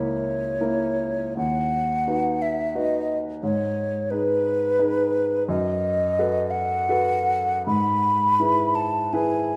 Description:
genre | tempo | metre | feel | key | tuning
classical, romantic duo for flute and grand piano | 74-90 BPM | 3/4 | rubato | E major from 5.5 s | A4 = 439 Hz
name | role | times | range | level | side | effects
mellow hollow concert flute | melody | 0.0-9.6 s | B4 to B5 | -25 LUFS | equal | none
warm grand piano | accompaniment | 0.0-9.6 s | C#2 to B4 | -28 LUFS | equal | none
room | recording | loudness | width
moderate scoring stage reverb, RT60 1.9 s | none | -23 LUFS | mono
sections
0.0-9.6 A section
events
none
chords
0.0 A#dim/C#; 1.4 B/D#; 3.4 G#m; 5.5 B7/F#; 7.7 E/G#

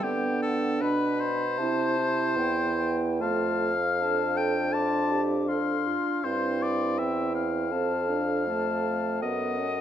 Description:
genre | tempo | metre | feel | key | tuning
classical, slow romantic movement for wind quintet | 69-83 BPM | 4/4 | rubato | unclear | A4 = 441 Hz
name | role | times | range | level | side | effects
concert flute | melody | 0.0-9.8 s | F#5 to D6 | -35 LUFS | left 6 dB | none
clear oboe | second line | 0.0-9.8 s | G4 to A5 | -30 LUFS | left 4 dB | none
mellow clarinet | accompaniment | 0.0-9.8 s | D4 to A4 | -32 LUFS | right 7 dB | none
warm French horn | accompaniment | 0.0-9.8 s | A3 to D4 | -32 LUFS | left 1 dB | none
warm bassoon | bass | 0.0-9.8 s | E2 to D3 | -30 LUFS | right 2 dB | none
room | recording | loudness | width
moderate recital hall reverb, RT60 1.5 s | none | -24 LUFS | side -10 dB against mid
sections
0.0-9.8 A section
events
none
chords
0.0 G/D; 1.6 C; 3.2 F; 6.2 C/G; 7.7 F6; 9.2 B7/F#

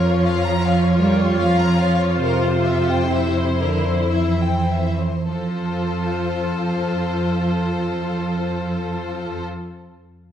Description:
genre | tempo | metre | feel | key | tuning
classical, slow romantic movement for string orchestra | 48-82 BPM | 3/4 | rubato | F major | A4 = 441 Hz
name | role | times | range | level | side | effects
clear studio violin section | melody | 0.0-9.4 s | C5 to Db5 | -28 LUFS | left 7 dB | none
rich studio violin section | second line | 0.0-9.4 s | A4 to Bb5 | -27 LUFS | left 2 dB | none
rich studio viola section | accompaniment | 0.0-9.4 s | E4 to F4 | -25 LUFS | left 1 dB | none
dark studio double bass section | bass | 0.0-9.4 s | F2 | -24 LUFS | right 1 dB | none
rich studio cello section | bass | 0.0-9.4 s | C3 to G3 | -22 LUFS | right 2 dB | none
room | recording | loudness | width
moderate recital hall reverb, RT60 1.4 s | none | -18 LUFS | side -9 dB against mid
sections
0.0-5.3 A section; 5.3-10.3 B section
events
slowing down 0.0-5.3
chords
0.0 Bbm/F; 2.2 C/F; 5.3 F

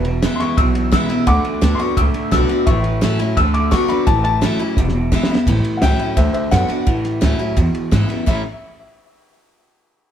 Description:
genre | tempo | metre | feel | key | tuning
rockabilly | 172 BPM | 4/4 | straight | A major | A4 = 438 Hz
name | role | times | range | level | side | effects
warm upright piano | melody | 0.0-8.4 s | C5 to E6 | -22 LUFS | left 3 dB | tape echo
picked steel-string acoustic guitar | accompaniment | 0.0-8.4 s | E2 to F#4 | -21 LUFS | left 2 dB | none
electric guitar through a small old amp | riff | 0.0-8.4 s | E2 to E4 | -23 LUFS | right 2 dB | none
upright bass | bass | 0.0-8.4 s | E1 to G#2 | -19 LUFS | equal | none
cloth-damped thuddy drum kit | drums | 0.0-8.4 s | crash cymbal, kick drum, ride cymbal, snare drum | -20 LUFS | right 1 dB | none
room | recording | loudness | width
light reverb | band playing live in one room | -14 LUFS | side -9 dB against mid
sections
0.0-5.5 A section; 5.5-8.3 B section; 8.3-9.7 C section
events
drum fill 4.8-5.5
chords
0.0 E; 1.3 D; 2.7 A; 3.4 D; 4.1 A; 4.8 E; 5.5 A; 6.2 D; 6.9 A; 7.6 E; 8.3 A

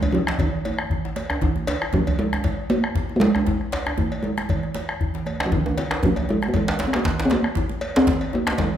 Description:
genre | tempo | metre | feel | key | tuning
west african traditional, West African drum ensemble | 117 BPM | 4/4 | swing 55% on 16ths | Ab major pentatonic | A4 = 440 Hz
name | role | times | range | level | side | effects
talking drum | melody | 0.0-8.8 s | Eb3 to C4 | -22 LUFS | equal | none
cowbell | percussion | 0.0-8.7 s | none | -32 LUFS | equal | none
djembe | percussion | 0.0-8.7 s | none | -31 LUFS | left 2 dB | none
djembe | percussion | 0.0-8.7 s | none | -26 LUFS | right 1 dB | none
congas | percussion | 0.1-8.7 s | none | -30 LUFS | right 4 dB | none
bombo | percussion | 0.3-8.7 s | none | -27 LUFS | left 2 dB | none
room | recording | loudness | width
wet recital hall reverb, RT60 1.4 s | none | -20 LUFS | side -10 dB against mid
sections
0.0-8.8 A section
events
drum fill 5.0-5.5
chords
none

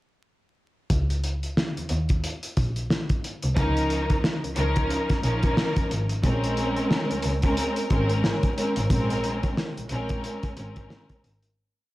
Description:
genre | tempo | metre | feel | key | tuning
hip hop, boom-bap hip-hop | 90 BPM | 4/4 | swing 60% on 16ths | Bb minor | A4 = 442 Hz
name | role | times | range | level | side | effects
rich double bass | bass | 0.9-11.5 s | Ab1 to Eb2 | -27 LUFS | equal | none
cloth-damped thuddy drum kit | drums | 0.9-11.6 s | hi-hat, kick drum, snare drum | -26 LUFS | equal | none
dark studio string section | accompaniment | 3.6-11.4 s | F3 to Bb4 | -26 LUFS | equal | cassette tape, high-pass filter, low-pass filter
room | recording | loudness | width
light reverb, small room ambience | vinyl crackle | -23 LUFS | side -17 dB against mid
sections
0.9-11.6 hook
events
fade-out 8.9-11.6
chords
0.9 Db69; 6.2 Bbm9

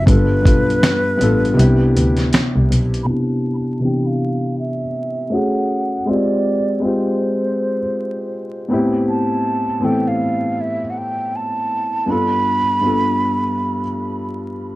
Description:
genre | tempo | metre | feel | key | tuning
lo-fi hip hop | 80 BPM | 4/4 | swing 59% on 16ths | C major | A4 = 438 Hz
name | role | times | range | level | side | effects
mellow hollow concert flute | melody | 0.0-14.3 s | B4 to B5 | -22 LUFS | right 2 dB | low-pass filter
felt-muted upright piano | accompaniment | 0.0-14.8 s | G2 to A4 | -19 LUFS | left 1 dB | low-pass filter
warm double bass | bass | 0.0-3.1 s | G1 to D2 | -17 LUFS | equal | none
dusty soul sampler-style drum kit | drums | 0.1-3.1 s | finger snaps, hi-hat, kick drum, snare drum | -16 LUFS | equal | vintage 12-bit sampler grit
room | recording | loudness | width
moderate small room reverb, RT60 0.6 s | vinyl crackle | -16 LUFS | side -17 dB against mid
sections
0.0-3.1 A section; 3.1-14.8 B section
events
kick muted 1.6-3.1; filter sweep 3.1-14.8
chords
0.1 G9; 1.6 Cmaj7; 3.1 Cmaj9; 5.3 F#madd9; 6.1 Fmadd9; 8.7 Am7; 12.1 G9

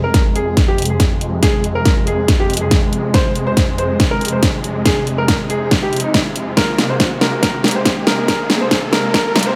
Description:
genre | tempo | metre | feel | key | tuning
heavy wobble dubstep | 140 BPM | 4/4 | half-time | F minor | A4 = 439 Hz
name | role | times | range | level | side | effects
clear grand piano | melody | 0.0-9.6 s | Eb4 to C5 | -23 LUFS | equal | digital delay
supersaw chords | sustained chords | 0.0-9.6 s | F2 to Bb3 | -23 LUFS | equal | sidechain pumping, low-pass filter
riser | sound effects | 0.0-9.6 s | none | -32 LUFS | equal | none
dubstep drum kit | drums | 0.1-9.5 s | hi-hat, snare drum | -19 LUFS | equal | none
electronic kick drum | drums | 0.1-9.2 s | none | -19 LUFS | equal | none
room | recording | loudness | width
light reverb, digital ambience | high-pass filter | -16 LUFS | mono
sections
0.0-9.6 A section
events
build-up 0.0-9.6; drum fill 0.0-9.6; filter sweep on supersaw synth 0.0-9.6; filter sweep 0.0-9.6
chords
0.0 Fm; 6.6 Abadd9

